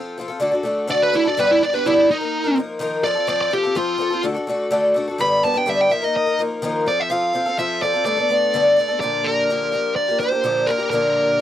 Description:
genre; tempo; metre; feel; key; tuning
rock; 126 BPM; 4/4; straight; unclear; A4 = 439 Hz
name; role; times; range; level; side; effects
picked twelve-string acoustic guitar; accompaniment; 0.0-11.4 s; G2 to B4; -20 LUFS; left 1 dB; none
smooth overdriven lead guitar; melody; 0.9-11.4 s; Eb4 to B5; -19 LUFS; equal; none
room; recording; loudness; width
light reverb; dry, close 1970s-style studio recording; -17 LUFS; side -11 dB against mid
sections
0.0-9.0 A section; 9.0-11.4 B section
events
lead electric guitar solo 0.0-9.0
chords
0.4 D; 1.4 G; 2.1 Ebsus2; 3.0 F; 4.2 D; 5.2 G; 5.9 Ebsus2; 6.9 F; 8.1 Gadd9; 9.0 Bb6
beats
0.42 0.90 | 1.38 1.85 2.33 2.81 | 3.29 3.76 4.24 4.72 | 5.20 5.67 6.15 6.63 | 7.11 7.58 8.06 8.54 | 9.02 9.49 9.97 10.45 | 10.93 11.41

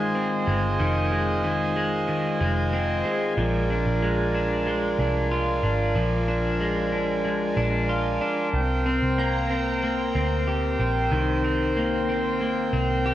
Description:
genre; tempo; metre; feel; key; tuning
dream pop; 93 BPM; 4/4; straight; unclear; A4 = 436 Hz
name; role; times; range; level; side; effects
pipe organ, foundations; sustained chords; 0.0-13.1 s; C4 to Ab5; -26 LUFS; right 1 dB; none
electric guitar at the edge of break-up; arpeggios; 0.0-13.1 s; Eb3 to G4; -26 LUFS; left 2 dB; lush chorus, ping-pong delay
vintage muted picked electric bass; bass; 0.0-13.1 s; F1 to D2; -27 LUFS; equal; none
shimmering bell with halo; texture; 9.2-13.1 s; G5 to Bb5; -37 LUFS; right 2 dB; ensemble chorus, ping-pong delay
room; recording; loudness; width
wet concert hall reverb, RT60 2.4 s; worn, warbling old tape, cassette tape, warbly pitch drift; -22 LUFS; side -13 dB against mid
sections
0.0-13.1 A section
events
none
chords
0.0 Fm7; 3.4 Bb7; 8.5 Cm7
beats
0.15 | 0.80 1.44 2.08 2.73 | 3.38 4.02 4.67 5.31 | 5.96 6.60 7.25 7.89 | 8.54 9.18 9.83 10.47 | 11.12 11.76 12.41 13.05

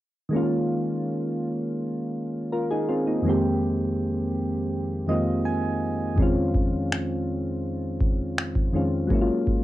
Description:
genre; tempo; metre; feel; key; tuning
contemporary R&B; 82 BPM; 4/4; straight; unclear; A4 = 441 Hz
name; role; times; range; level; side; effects
soft electric-piano-like synth keys; accompaniment; 0.3-9.6 s; F2 to Ab5; -24 LUFS; equal; chorus, cassette tape
booming analog drum machine; drums; 6.2-9.6 s; finger snaps, kick drum; -23 LUFS; equal; none
room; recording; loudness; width
moderate small room reverb, RT60 0.5 s; home recording on cassette; -23 LUFS; side -15 dB against mid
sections
0.3-9.6 A section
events
synth keys fill 4.7-6.2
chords
0.3 Eb9sus4; 3.3 Fm11; 6.2 Dbmaj9/F; 9.1 Gbmaj9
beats
| 0.32 1.06 1.79 2.52 | 3.25 3.98 4.71 5.45 | 6.18 6.91 7.64 8.37 | 9.11

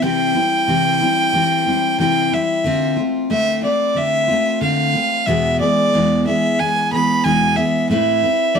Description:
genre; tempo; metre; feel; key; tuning
acoustic folk duo or small band; 91 BPM; 4/4; straight; unclear; A4 = 440 Hz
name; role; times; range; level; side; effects
clear fiddle; melody; 0.0-8.6 s; D5 to B5; -17 LUFS; right 1 dB; slapback echo
picked steel-string acoustic guitar; accompaniment; 0.0-8.6 s; E2 to B4; -18 LUFS; left 2 dB; none
room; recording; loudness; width
little or no reverb; dry, close 1970s-style studio recording; -15 LUFS; side -6 dB against mid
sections
0.0-8.6 A section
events
none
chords
0.0 C; 2.7 Dm7; 5.3 E; 7.9 Amadd9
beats
| 0.03 0.69 1.34 2.00 | 2.66 3.31 3.97 4.63 | 5.28 5.94 6.59 7.25 | 7.90 8.56

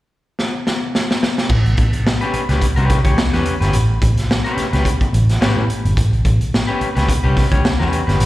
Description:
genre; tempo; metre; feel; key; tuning
funk; 107 BPM; 4/4; swing 56% on 16ths; A mixolydian; A4 = 440 Hz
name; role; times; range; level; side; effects
raw garage drum kit; drums; 0.4-8.3 s; crash cymbal, hi-hat, kick drum, snare drum; -18 LUFS; equal; none
vintage muted picked electric bass; bass; 1.5-8.3 s; G1 to A2; -16 LUFS; equal; none
electric guitar at the edge of break-up; accompaniment; 2.2-8.2 s; C#4 to C#5; -21 LUFS; left 3 dB; plate reverb, slapback echo
room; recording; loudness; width
little or no reverb; live gig heard through the venue's PA, recital hall reverb; -14 LUFS; side -16 dB against mid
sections
0.0-1.5 A section; 1.5-8.3 B section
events
drum fill 0.4-1.5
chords
0.0 N.C.; 1.5 A9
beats
0.38 0.94 | 1.50 2.06 2.62 3.18 | 3.74 4.29 4.85 5.41 | 5.97 6.53 7.09 7.65 | 8.20

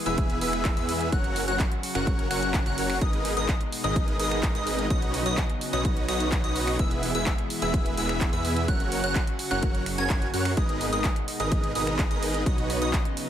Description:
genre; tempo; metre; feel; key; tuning
EDM, festival progressive house; 127 BPM; 4/4; straight; G# minor; A4 = 440 Hz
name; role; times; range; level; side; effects
lush unison pad; sustained chords; 0.0-13.3 s; B2 to G#4; -34 LUFS; left 1 dB; chorus, sidechain pumping
plucky unison lead; arpeggios; 0.1-13.0 s; D#6 to G#6; -32 LUFS; left 1 dB; phaser, sidechain pumping, dub echo
dense compressed supersaw; riff; 0.1-13.0 s; B3 to G#5; -30 LUFS; right 1 dB; sidechain pumping, dub echo
wide detuned saw bass; bass; 0.1-13.0 s; E1 to F#2; -31 LUFS; equal; chorus, sidechain pumping
house drum kit; drums; 0.1-13.3 s; finger snaps, handclaps, hi-hat; -33 LUFS; right 1 dB; overdrive
electronic kick drum; drums; 0.2-13.0 s; none; -26 LUFS; equal; overdrive
room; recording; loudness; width
little or no reverb; none; -23 LUFS; side -10 dB against mid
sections
0.0-13.3 A section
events
none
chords
0.0 E; 1.1 F#; 3.0 G#madd9; 4.9 Badd9; 6.8 E; 8.7 F#; 10.6 G#madd9; 12.5 Badd9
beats
0.18 0.65 | 1.12 1.60 2.07 2.54 | 3.01 3.49 3.96 4.43 | 4.90 5.38 5.85 6.32 | 6.79 7.27 7.74 8.21 | 8.68 9.16 9.63 10.10 | 10.57 11.04 11.52 11.99 | 12.46 12.94

